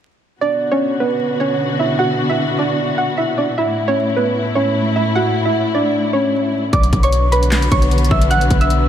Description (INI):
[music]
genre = hip hop, trap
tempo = 152 BPM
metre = 4/4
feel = half-time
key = B minor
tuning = A4 = 438 Hz
[part]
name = soft round pluck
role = melody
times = 0.4-8.9 s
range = B3 to F#6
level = -17 LUFS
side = right 1 dB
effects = chorus, analog delay
[part]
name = dark symphonic string section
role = sustained chords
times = 0.4-8.9 s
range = A2 to F#4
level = -20 LUFS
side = left 1 dB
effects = none
[part]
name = warm 808-style bass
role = bass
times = 6.7-8.9 s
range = A1 to B1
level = -16 LUFS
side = equal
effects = none
[part]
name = trap drum kit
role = drums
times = 6.7-8.8 s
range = handclaps, hi-hat, kick drum, snare drum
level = -17 LUFS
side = equal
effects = none
[sound]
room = moderate huge ambient reverb, RT60 4.7 s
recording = dreamy mix soaked in reverb, vinyl crackle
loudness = -14 LUFS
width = side -10 dB against mid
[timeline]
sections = 0.4-6.7 A section; 6.7-8.9 B section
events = none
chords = 0.4 Bm; 3.6 A